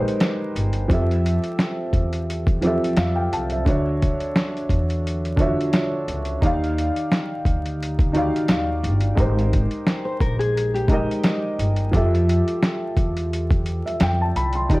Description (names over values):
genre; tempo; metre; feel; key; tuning
lo-fi hip hop; 87 BPM; 4/4; swing 55% on 16ths; unclear; A4 = 439 Hz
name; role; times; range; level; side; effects
felt-muted upright piano; accompaniment; 0.0-14.8 s; D3 to C6; -23 LUFS; equal; cassette tape, low-pass filter, plate reverb
lo-fi sampler-style drum kit; drums; 0.1-14.8 s; hi-hat, kick drum, snare drum; -22 LUFS; equal; overdrive, vintage 12-bit sampler grit
upright bass; bass; 0.6-14.8 s; G1 to F2; -23 LUFS; equal; none
nylon-string guitar; second line; 10.1-11.7 s; G4 to C5; -26 LUFS; left 2 dB; low-pass filter, analog delay, plate reverb
room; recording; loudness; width
moderate studio reverb, RT60 0.6 s; dark, warm production, vinyl crackle; -19 LUFS; side -21 dB against mid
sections
0.0-14.8 A section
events
none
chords
0.0 Abmaj9; 0.9 Fmaj9; 3.7 Dmaj9; 6.4 Ebmaj9; 9.2 Abmaj9; 11.9 Fmaj9